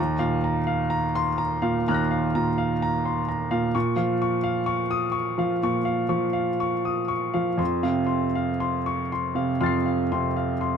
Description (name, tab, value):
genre	neoclassical minimalist piano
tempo	59-65 BPM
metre	4/4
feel	rubato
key	Bb minor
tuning	A4 = 440 Hz
part	clear baby grand piano	solo	0.0-10.8 s	Eb2 to C7	-22 LUFS	equal	none
room	light reverb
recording	none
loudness	-22 LUFS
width	side -7 dB against mid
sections	0.0-10.8 A section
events	none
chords	0.0 Ebmadd9; 3.7 Bbm; 7.6 F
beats	0.91 1.85 2.80 | 3.75 4.69 5.63 6.60 | 7.60 8.61 9.61 10.61